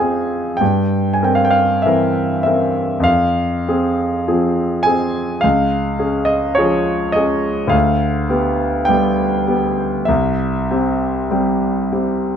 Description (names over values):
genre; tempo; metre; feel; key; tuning
classical, romantic nocturne for solo piano; 48-54 BPM; 4/4; rubato; unclear; A4 = 440 Hz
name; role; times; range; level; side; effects
warm grand piano; solo; 0.0-12.4 s; C2 to Ab5; -14 LUFS; equal; none
room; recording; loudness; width
light reverb; close, detailed microphones; -14 LUFS; side -8 dB against mid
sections
0.0-12.4 A section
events
none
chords
0.0 Fm; 0.6 C7/G; 3.1 Fm; 5.4 Db; 7.7 G7/D; 10.1 C